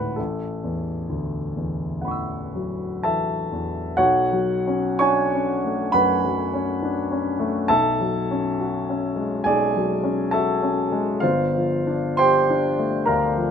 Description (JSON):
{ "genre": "classical, impressionist solo piano", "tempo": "56-70 BPM", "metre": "4/4", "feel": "rubato", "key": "unclear", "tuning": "A4 = 440 Hz", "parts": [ { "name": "warm grand piano", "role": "solo", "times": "0.0-13.5 s", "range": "G1 to E6", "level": "-20 LUFS", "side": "equal", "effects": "none" } ], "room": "light reverb", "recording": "close, detailed microphones", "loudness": "-20 LUFS", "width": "side -7 dB against mid", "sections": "0.0-4.0 A section; 4.0-13.5 B section", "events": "none", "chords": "0.2 A69; 4.0 Bm9; 7.7 F#madd9/B; 11.2 Gm9" }